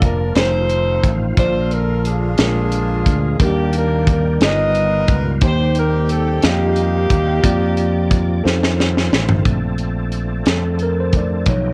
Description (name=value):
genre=slow gospel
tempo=60 BPM (dotted quarters)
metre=6/8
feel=straight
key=Bb major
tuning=A4 = 440 Hz
part: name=clear saxophone section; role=melody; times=0.0-8.8 s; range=Bb3 to D#5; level=-23 LUFS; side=equal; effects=cassette tape
part: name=mellow tine electric piano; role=accompaniment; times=0.0-11.7 s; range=G2 to Eb5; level=-25 LUFS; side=equal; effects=cassette tape
part: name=overdriven tonewheel organ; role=sustained chords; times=0.0-11.7 s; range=D3 to D5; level=-31 LUFS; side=equal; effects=slow rotary speaker, chorus vibrato, cassette tape
part: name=fingered electric bass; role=bass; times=0.0-11.7 s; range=F1 to F2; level=-22 LUFS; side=equal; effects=none
part: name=crisp fusion drum kit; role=drums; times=0.0-11.6 s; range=hi-hat, kick drum, snare drum, toms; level=-20 LUFS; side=equal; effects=none
room=small room ambience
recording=home recording on cassette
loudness=-17 LUFS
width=mono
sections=0.0-9.5 A section; 9.5-11.7 B section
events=drum fill 8.4-9.5; tine electric piano solo 9.5-11.7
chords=0.4 F7; 1.4 Bbmaj7; 2.4 Bb7; 3.4 Ebmaj7; 4.4 G7alt; 5.4 Cm7/Eb; 6.4 F9sus4; 7.4 Bb/F; 8.4 F7; 9.5 Bbmaj9